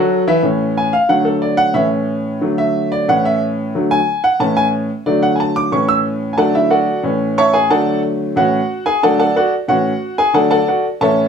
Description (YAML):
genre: latin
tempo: 182 BPM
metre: 4/4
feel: straight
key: A major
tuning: A4 = 441 Hz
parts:
  - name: clear baby grand piano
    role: solo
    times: 0.0-11.3 s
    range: A2 to E6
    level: -13 LUFS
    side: equal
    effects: none
room: moderate studio reverb, RT60 0.5 s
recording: small room ambience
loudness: -13 LUFS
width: side -7 dB against mid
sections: 0.4-11.3 A section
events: grand piano solo 0.4-11.3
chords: 0.4 A; 1.1 D; 1.8 A; 2.4 D; 3.1 A; 3.7 D; 4.4 A; 5.1 D; 5.7 A; 6.4 D; 7.0 A; 7.7 D; 8.4 A; 9.0 D; 9.7 A; 10.4 D